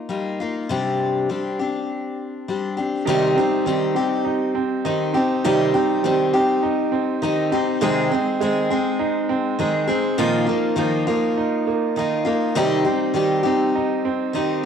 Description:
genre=acoustic folk duo or small band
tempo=101 BPM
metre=4/4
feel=straight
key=C minor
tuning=A4 = 438 Hz
part: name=picked steel-string acoustic guitar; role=accompaniment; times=0.0-14.6 s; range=Bb2 to Ab4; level=-21 LUFS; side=left 4 dB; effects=none
part: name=bright upright piano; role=arpeggios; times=3.1-14.7 s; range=F3 to Eb4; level=-21 LUFS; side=right 8 dB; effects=none
room=moderate lush hall reverb, RT60 2.4 s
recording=home recording on cassette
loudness=-18 LUFS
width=side -7 dB against mid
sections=0.0-3.1 A section; 3.1-14.7 B section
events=none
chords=0.0 Ebadd9; 0.7 Csus2; 3.1 Cm; 7.8 Ab/C; 10.2 Bbsus4; 12.6 Cm

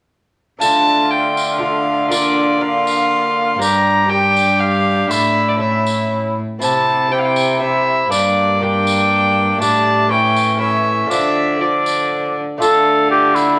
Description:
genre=classical, renaissance-style consort dance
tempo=120 BPM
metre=3/4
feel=straight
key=D minor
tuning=A4 = 440 Hz
part: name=rich violin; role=melody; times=0.6-13.6 s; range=D5 to Bb5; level=-20 LUFS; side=equal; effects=none
part: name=mellow cor anglais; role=second line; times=0.6-13.6 s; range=C#4 to A4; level=-20 LUFS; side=equal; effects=none
part: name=lute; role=accompaniment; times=0.6-13.6 s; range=G2 to Bb4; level=-27 LUFS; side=equal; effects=none
part: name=mellow bassoon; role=accompaniment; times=0.6-13.6 s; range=E3 to D4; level=-27 LUFS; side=equal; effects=none
part: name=rich cello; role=bass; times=0.6-13.6 s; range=G2 to D3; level=-24 LUFS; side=equal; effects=none
part: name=tambourine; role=percussion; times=0.6-13.6 s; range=none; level=-29 LUFS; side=equal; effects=none
room=wet stone room reverb, RT60 1.0 s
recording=none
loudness=-16 LUFS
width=mono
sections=0.6-12.6 A section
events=none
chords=0.6 Dm; 2.1 Bb/D; 3.6 Gm; 5.1 Asus4; 5.6 A; 6.6 C; 8.1 Gm; 9.6 A7sus4; 10.1 A7; 11.1 Dm

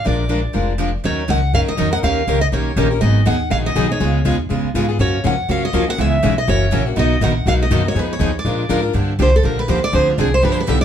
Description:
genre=acoustic string swing (jazz manouche)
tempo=243 BPM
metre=4/4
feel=swing 56% on 8ths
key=Eb minor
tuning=A4 = 440 Hz
part: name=picked steel-string acoustic guitar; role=melody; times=0.0-10.8 s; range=F4 to Gb5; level=-21 LUFS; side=right 2 dB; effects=none
part: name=picked steel-string acoustic guitar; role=accompaniment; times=0.0-10.8 s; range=B2 to Bb4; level=-23 LUFS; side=right 4 dB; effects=none
part: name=picked plugged-in steel-string acoustic guitar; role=accompaniment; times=0.1-10.8 s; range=B2 to Bb4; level=-22 LUFS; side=left 4 dB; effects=none
part: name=upright bass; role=bass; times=0.1-10.8 s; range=F1 to Bb2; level=-18 LUFS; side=equal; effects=none
room=moderate studio ambience, RT60 0.4 s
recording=band playing live in one room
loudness=-15 LUFS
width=side -9 dB against mid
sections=0.0-1.0 A section; 1.0-8.9 B section; 8.9-10.8 C section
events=steel-string acoustic guitar solo 8.9-10.8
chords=0.1 Bb7; 1.0 Ebm7; 2.0 Eb7; 3.0 Abm9; 4.0 Db7; 5.0 Gbmaj7; 6.0 Dbm7; 6.5 Gb7; 7.0 Bmaj7; 8.0 Fm7b5; 8.5 Bb7; 8.9 Gm7; 9.9 Dm7b5

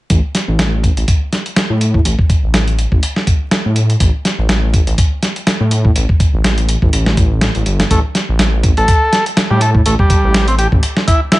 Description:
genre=breakbeat, breaks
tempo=123 BPM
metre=4/4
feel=swing 55% on 16ths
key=unclear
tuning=A4 = 438 Hz
part: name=dark detuned saw bass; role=bass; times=0.1-10.8 s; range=G1 to A2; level=-14 LUFS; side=equal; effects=none
part: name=dusty soul sampler-style drum kit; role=drums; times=0.1-11.4 s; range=hi-hat, kick drum, snare drum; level=-13 LUFS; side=equal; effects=none
part: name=combo organ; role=riff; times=7.9-11.4 s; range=G3 to A4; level=-15 LUFS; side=equal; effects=overdrive, vintage 12-bit sampler grit, dub echo
room=little or no reverb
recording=vinyl crackle, nothing above 10.9 kHz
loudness=-11 LUFS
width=side -18 dB against mid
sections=0.1-11.4 A section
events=none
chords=0.1 A7(no3)

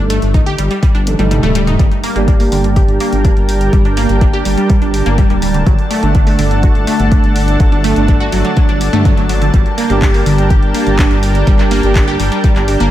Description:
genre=melodic techno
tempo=124 BPM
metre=4/4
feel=straight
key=G harmonic minor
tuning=A4 = 439 Hz
part: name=wide unison pluck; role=arpeggios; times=0.0-12.9 s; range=D3 to G4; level=-17 LUFS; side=right 1 dB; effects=phaser, vintage 12-bit sampler grit, sidechain pumping, tape echo
part: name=analog synth brass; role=stabs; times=0.0-12.8 s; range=D3 to A4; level=-19 LUFS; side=right 3 dB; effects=chorus, sidechain pumping, tape echo
part: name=dark detuned saw bass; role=bass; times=0.0-12.9 s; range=D1 to G2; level=-16 LUFS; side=equal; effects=sidechain pumping
part: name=punchy analog drum machine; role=drums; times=0.1-12.9 s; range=handclaps, hi-hat, toms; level=-23 LUFS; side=left 1 dB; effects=sidechain pumping on hats, sidechain pumping on toms
part: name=electronic kick drum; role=drums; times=0.3-12.5 s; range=none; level=-12 LUFS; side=equal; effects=none
part: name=lush unison pad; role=sustained chords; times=1.8-12.9 s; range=D4 to A5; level=-21 LUFS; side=left 1 dB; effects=chorus, sidechain pumping
room=light reverb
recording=none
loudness=-10 LUFS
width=side -13 dB against mid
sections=0.0-12.9 A section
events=filter sweep on analog polysynth 0.0-12.9; drum fill 1.1-1.8; kick drops out 1.3-1.8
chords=0.0 Ebmaj7#11; 1.8 Gmadd9; 5.7 D/G; 9.5 Gmadd9

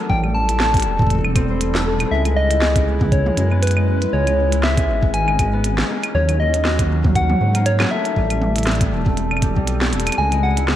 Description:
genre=IDM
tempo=119 BPM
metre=4/4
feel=swing 56% on 16ths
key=unclear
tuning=A4 = 440 Hz
part: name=warbly tape-like pad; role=sustained chords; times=0.0-10.8 s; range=F#3 to B4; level=-27 LUFS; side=right 2 dB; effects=chorus, built-in reverb, phaser
part: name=concert harp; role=arpeggios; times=0.0-10.8 s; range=F#3 to C5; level=-25 LUFS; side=left 4 dB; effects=vintage 12-bit sampler grit, digital delay
part: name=soft struck synth lead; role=melody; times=0.1-10.8 s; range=B4 to A5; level=-22 LUFS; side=left 1 dB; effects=chorus, digital delay
part: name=dark detuned saw bass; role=bass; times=0.1-10.8 s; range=E1 to G#2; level=-19 LUFS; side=equal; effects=none
part: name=electronic kick drum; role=drums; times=0.1-9.7 s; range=none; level=-19 LUFS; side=equal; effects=overdrive
part: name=glitchy drum kit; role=drums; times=0.2-10.8 s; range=claves, hi-hat, snare drum, toms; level=-24 LUFS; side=right 1 dB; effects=gated reverb
room=moderate lush hall reverb, RT60 1.9 s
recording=bright 1980s-style digital production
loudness=-15 LUFS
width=side -12 dB against mid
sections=0.0-10.8 A section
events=drum fill 9.9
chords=0.0 Am7; 2.1 C#m7; 5.9 D#m7; 7.9 Am7; 10.2 C#m7

